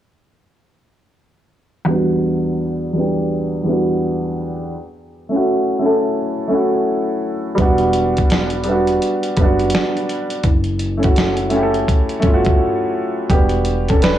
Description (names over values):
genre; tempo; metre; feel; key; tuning
lo-fi hip hop; 84 BPM; 4/4; swing 61% on 16ths; E dorian; A4 = 441 Hz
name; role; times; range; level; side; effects
warm upright piano; accompaniment; 1.8-14.2 s; E2 to B4; -16 LUFS; equal; low-pass filter
upright bass; bass; 7.6-14.2 s; E1 to G1; -21 LUFS; equal; none
dusty soul sampler-style drum kit; drums; 7.6-14.2 s; hi-hat, kick drum, snare drum; -18 LUFS; equal; vintage 12-bit sampler grit
room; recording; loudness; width
light reverb, small room reverb; dry, gritty hardware recording; -15 LUFS; side -11 dB against mid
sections
1.9-13.3 A section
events
filter sweep on upright piano 1.9-13.3; break 12.6-13.3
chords
1.9 Em7; 4.7 F#m7; 7.6 Em7; 10.4 F#m7; 13.3 Em7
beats
| 1.87 2.58 3.30 4.01 | 4.73 5.44 6.16 6.87 | 7.58 8.30 9.01 9.73 | 10.44 11.16 11.87 12.59 | 13.30 14.01